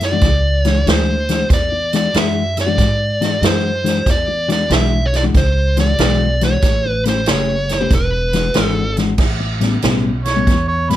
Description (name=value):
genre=electric blues shuffle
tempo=94 BPM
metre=4/4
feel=swing 66% on 8ths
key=unclear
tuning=A4 = 442 Hz
part: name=dark smooth lead guitar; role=melody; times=0.0-9.0 s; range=B4 to E5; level=-19 LUFS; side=equal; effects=overdrive, slapback echo
part: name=clean electric guitar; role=riff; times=0.0-11.0 s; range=A2 to B4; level=-19 LUFS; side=left 5 dB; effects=wide subtle chorus
part: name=upright bass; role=bass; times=0.0-11.0 s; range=E1 to G#2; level=-19 LUFS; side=right 1 dB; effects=none
part: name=swinging big-band drum kit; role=drums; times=0.0-11.0 s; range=crash cymbal, hi-hat, kick drum, snare drum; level=-18 LUFS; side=right 1 dB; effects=none
part: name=mellow harmonica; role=second line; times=10.3-11.0 s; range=B4 to C#5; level=-18 LUFS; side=right 3 dB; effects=overdrive, slapback echo
room=light reverb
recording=none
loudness=-13 LUFS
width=side -13 dB against mid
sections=0.0-9.2 A section; 9.2-11.0 B section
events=harmonica solo 9.2-11.0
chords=0.0 E9; 6.6 A9; 7.9 E9; 9.2 A9